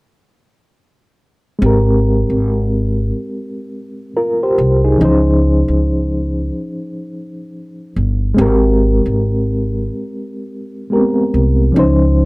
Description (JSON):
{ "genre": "hip hop", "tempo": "71 BPM", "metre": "4/4", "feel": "swing 60% on 16ths", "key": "Ab major", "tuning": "A4 = 440 Hz", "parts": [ { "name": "reed electric piano", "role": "accompaniment", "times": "1.6-12.3 s", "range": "Fb3 to C5", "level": "-16 LUFS", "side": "equal", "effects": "medium tremolo, cassette tape" }, { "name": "upright bass", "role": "bass", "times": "1.6-12.3 s", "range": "G1 to Db2", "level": "-14 LUFS", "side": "equal", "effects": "none" } ], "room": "moderate studio ambience, RT60 0.5 s", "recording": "dark, warm production", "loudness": "-12 LUFS", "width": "side -25 dB against mid", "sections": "1.6-12.3 A section", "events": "none", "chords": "1.6 Abmaj9; 5.0 Dbmaj9; 8.4 Abmaj9", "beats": "| 1.62 2.46 3.31 4.15 | 5.00 5.84 6.69 7.53 | 8.38 9.22 10.07 10.91 | 11.76" }